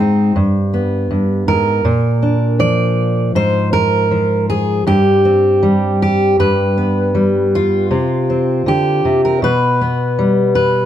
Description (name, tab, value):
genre	folk, solo fingerstyle acoustic guitar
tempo	80 BPM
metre	4/4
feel	straight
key	unclear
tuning	A4 = 439 Hz
part	fingerpicked steel-string acoustic guitar	solo	0.0-10.9 s	G2 to D5	-12 LUFS	equal	none
room	light reverb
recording	dark, warm production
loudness	-12 LUFS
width	side -10 dB against mid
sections	0.0-10.9 A section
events	none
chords	0.4 G; 1.9 Bb; 3.4 Fm/Ab; 4.9 Gsus4; 6.4 G; 7.9 Csus4; 9.4 G/B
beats	0.36 1.10 | 1.85 2.60 3.35 4.11 | 4.87 5.63 6.39 7.15 | 7.92 8.67 9.43 10.18